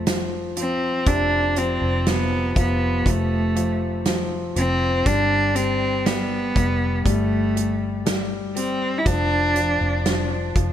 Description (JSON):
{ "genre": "pop ballad", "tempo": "60 BPM", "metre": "4/4", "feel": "straight", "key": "F lydian", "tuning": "A4 = 439 Hz", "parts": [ { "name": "warm cello", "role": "melody", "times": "0.0-10.3 s", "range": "A3 to E4", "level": "-22 LUFS", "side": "equal", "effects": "ping-pong delay" }, { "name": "warm concert grand piano", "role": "accompaniment", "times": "0.0-10.7 s", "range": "C3 to G3", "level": "-27 LUFS", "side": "left 3 dB", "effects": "none" }, { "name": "vintage muted fingered electric bass", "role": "bass", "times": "0.0-10.7 s", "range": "F1 to G1", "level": "-25 LUFS", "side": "equal", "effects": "none" }, { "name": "loose indie drum kit", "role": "drums", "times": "0.1-10.7 s", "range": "hi-hat, kick drum, snare drum", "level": "-24 LUFS", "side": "right 1 dB", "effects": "gated reverb" } ], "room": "light reverb, small room ambience", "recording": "bright 1980s-style digital production", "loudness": "-19 LUFS", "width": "side -10 dB against mid", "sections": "0.0-10.7 A section", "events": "none", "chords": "0.0 F5; 5.1 Fsus2" }